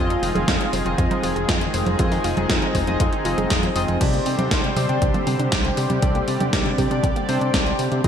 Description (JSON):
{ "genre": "italo disco", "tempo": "119 BPM", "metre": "4/4", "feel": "straight", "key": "C minor", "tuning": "A4 = 440 Hz", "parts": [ { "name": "lush unison pad", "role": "sustained chords", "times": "0.0-8.1 s", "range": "D3 to D5", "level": "-25 LUFS", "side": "right 1 dB", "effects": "chorus" }, { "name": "wide unison pluck", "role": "arpeggios", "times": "0.0-8.1 s", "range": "C3 to C5", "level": "-30 LUFS", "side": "right 2 dB", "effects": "ping-pong delay" }, { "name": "chorused polysynth", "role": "stabs", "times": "0.0-8.1 s", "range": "C4 to Eb5", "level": "-27 LUFS", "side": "left 4 dB", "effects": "ping-pong delay" }, { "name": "fat analog bass", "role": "bass", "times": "0.0-8.1 s", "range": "F1 to C3", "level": "-25 LUFS", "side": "equal", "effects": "none" }, { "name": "gated 80s digital drum machine", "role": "drums", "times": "0.1-8.1 s", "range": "congas, crash cymbal, hi-hat, snare drum", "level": "-25 LUFS", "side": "right 1 dB", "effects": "gated reverb, gated reverb snare" }, { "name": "electronic kick drum", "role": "drums", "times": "0.5-8.1 s", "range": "none", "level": "-24 LUFS", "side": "equal", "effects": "overdrive" } ], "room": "moderate plate reverb, RT60 2.2 s", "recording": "bright 1980s-style digital production", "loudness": "-18 LUFS", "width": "side -8 dB against mid", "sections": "0.0-8.1 A section", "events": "none", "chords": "0.0 Fm7; 4.0 Csus2" }